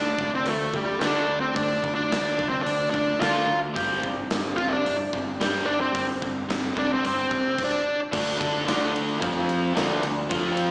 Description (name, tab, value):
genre	classic rock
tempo	110 BPM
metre	4/4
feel	straight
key	D minor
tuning	A4 = 440 Hz
part	octave-fuzz lead guitar	melody	0.0-8.0 s	G3 to F4	-25 LUFS	equal	distortion, slapback echo, tape echo
part	string machine, full ensemble	sustained chords	0.0-10.7 s	A3 to D5	-37 LUFS	equal	none
part	distorted electric guitar	riff	0.0-10.7 s	D3 to D5	-28 LUFS	equal	overdrive, slapback echo
part	fuzz fingered electric bass	bass	0.0-10.7 s	F1 to D3	-32 LUFS	equal	overdrive
part	gated 80s drum kit	drums	0.2-10.7 s	crash cymbal, hi-hat, kick drum, ride cymbal, snare drum	-30 LUFS	equal	none
part	warm concert grand piano	accompaniment	8.1-10.7 s	C4 to F5	-32 LUFS	equal	none
part	overdriven electric guitar	riff	8.1-10.7 s	D3 to D5	-30 LUFS	equal	slapback echo
part	tambourine	percussion	8.4-10.7 s	none	-46 LUFS	equal	none
room	light reverb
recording	live gig heard through the venue's PA, recital hall reverb, small speaker sound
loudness	-22 LUFS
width	side -26 dB against mid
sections	0.0-8.1 A section; 8.1-10.7 B section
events	none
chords	0.0 Dm; 3.8 Gsus4; 8.1 Dm; 9.2 F5; 9.8 Dm